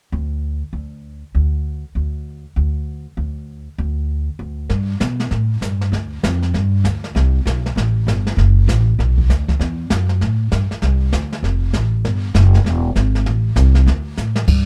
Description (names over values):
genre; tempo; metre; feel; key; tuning
jazz, small-group swing and bop; 196 BPM; 4/4; swing 62% on 8ths; G major; A4 = 441 Hz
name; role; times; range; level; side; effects
upright bass; bass; 0.1-14.7 s; E1 to B2; -18 LUFS; equal; none
jazz brush drum kit; drums; 4.7-14.7 s; brushed snare drum, crash cymbal, hi-hat, kick drum, snare drum; -24 LUFS; equal; none
room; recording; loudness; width
light reverb; none; -18 LUFS; mono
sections
0.0-4.7 A section; 4.7-14.5 B section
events
drum fill 14.2-14.5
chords
none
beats
0.12 0.42 0.73 | 1.04 1.34 1.65 1.96 | 2.26 2.57 2.87 3.18 | 3.49 3.79 4.10 4.40 | 4.71 5.01 5.32 5.63 | 5.93 6.24 6.54 6.85 | 7.15 7.46 7.76 8.07 | 8.38 8.68 8.99 9.29 | 9.60 9.90 10.21 10.52 | 10.82 11.13 11.43 11.74 | 12.04 12.35 12.66 12.96 | 13.27 13.57 13.88 14.18 | 14.49